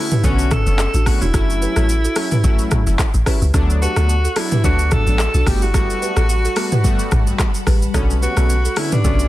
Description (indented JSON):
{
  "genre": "afrobeats",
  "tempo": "109 BPM",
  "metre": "4/4",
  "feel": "swing 55% on 16ths",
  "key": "unclear",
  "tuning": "A4 = 440 Hz",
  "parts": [
    { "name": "clear alto saxophone", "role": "melody", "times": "0.0-9.3 s", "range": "D4 to A4", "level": "-23 LUFS", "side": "left 1 dB", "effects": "tape echo" },
    { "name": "warm analog keys", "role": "accompaniment", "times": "0.0-9.3 s", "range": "D3 to F#4", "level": "-25 LUFS", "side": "left 1 dB", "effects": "chorus, tremolo" },
    { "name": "balafon", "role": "riff", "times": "0.1-9.2 s", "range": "D4 to B4", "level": "-28 LUFS", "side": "right 6 dB", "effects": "none" },
    { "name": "deep house drum kit", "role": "drums", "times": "0.1-9.3 s", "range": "handclaps, hi-hat, kick drum, rim click, shaker, toms", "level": "-18 LUFS", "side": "equal", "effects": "soft clipping on snare" },
    { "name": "deep log drum bass", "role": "bass", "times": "0.2-9.3 s", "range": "E1 to D2", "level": "-17 LUFS", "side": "equal", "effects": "none" },
    { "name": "granular cloud pad", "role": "sustained chords", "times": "4.9-9.3 s", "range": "G3 to C#6", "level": "-31 LUFS", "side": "left 2 dB", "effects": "built-in reverb" }
  ],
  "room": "digital ambience",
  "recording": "dense, heavily limited modern master",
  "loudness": "-14 LUFS",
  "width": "side -15 dB against mid",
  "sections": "0.0-9.3 A section",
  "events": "none",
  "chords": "0.0 Bm9; 1.3 F#m7; 3.5 D6; 5.5 Gmaj9; 7.9 Bm9"
}